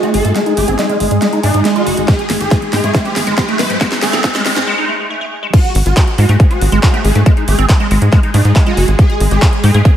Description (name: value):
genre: psychedelic trance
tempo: 139 BPM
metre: 4/4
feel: straight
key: G# major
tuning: A4 = 439 Hz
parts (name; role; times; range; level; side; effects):
- swarming rave lead; melody; 0.0-9.8 s; D#4 to B#4; -20 LUFS; equal; chorus, phaser, sidechain pumping, analog delay
- resonant blip pluck; second line; 0.0-9.9 s; G#3 to D#4; -30 LUFS; right 1 dB; none
- swarming drone; sustained chords; 0.0-10.0 s; G#3 to G#4; -21 LUFS; equal; built-in reverb, sidechain pumping
- liquid acid bass; riff; 0.0-9.8 s; G#3 to D#4; -19 LUFS; right 1 dB; phaser, auto-pan, sidechain pumping, analog delay
- big-room dance drum kit; drums; 0.0-9.9 s; crash cymbal, handclaps, hi-hat, snare drum; -20 LUFS; equal; none
- riser; sound effects; 1.2-4.7 s; none; -28 LUFS; left 1 dB; none
- warbly tape-like pad; texture; 0.0-4.7 s; D#4 to G#5; -28 LUFS; left 1 dB; none
- tight sequencer bass; bass; 0.1-9.8 s; F#1 to G#2; -13 LUFS; equal; none
- electronic kick drum; drums; 2.1-9.9 s; none; -10 LUFS; equal; none
room: moderate lush hall reverb, RT60 1.6 s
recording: dreamy mix soaked in reverb, high-pass filter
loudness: -10 LUFS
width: side -10 dB against mid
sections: 0.0-5.5 A section; 5.5-10.0 B section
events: build-up 0.0-5.5; drum fill 0.0-4.7; filter sweep on acid bass 0.0-5.5; filter sweep on synth drone 0.0-5.5; filter sweep 0.0-5.5; break 4.7-5.5; drop 5.5-10.0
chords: 0.0 G#5